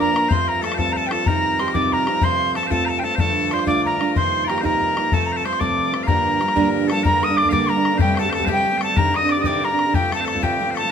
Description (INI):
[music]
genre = celtic folk, Celtic jig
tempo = 124 BPM (dotted quarters)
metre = 6/8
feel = straight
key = unclear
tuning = A4 = 440 Hz
[part]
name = wooden whistle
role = melody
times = 0.0-10.9 s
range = G5 to Eb6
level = -21 LUFS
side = right 1 dB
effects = none
[part]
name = loud bright bagpipes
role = second line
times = 0.0-10.9 s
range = G4 to F5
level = -26 LUFS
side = left 6 dB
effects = none
[part]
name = picked steel-string acoustic guitar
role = accompaniment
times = 0.0-10.9 s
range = F2 to Bb4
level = -23 LUFS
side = right 4 dB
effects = none
[part]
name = hand-pumped harmonium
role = drone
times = 0.0-10.9 s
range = G2 to F3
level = -30 LUFS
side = left 2 dB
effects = none
[part]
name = bodhran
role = percussion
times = 0.0-10.8 s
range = none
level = -24 LUFS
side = left 4 dB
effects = none
[sound]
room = moderate studio reverb, RT60 0.9 s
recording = minimal, uncompressed stereo recording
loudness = -17 LUFS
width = side -7 dB against mid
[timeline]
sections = 0.0-7.0 A section; 7.0-10.9 B section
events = none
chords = 0.3 F; 1.3 Cm; 2.2 F; 3.2 Dm; 4.2 Cm7; 5.1 F; 6.1 Gm; 7.0 Gmadd9; 8.0 Fadd9; 9.0 Cmadd9; 9.9 F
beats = | 0.29 0.78 | 1.26 1.74 | 2.23 2.71 | 3.19 3.67 | 4.16 4.64 | 5.12 5.60 | 6.08 6.57 | 7.05 7.53 | 8.01 8.49 | 8.97 9.45 | 9.94 10.42 | 10.90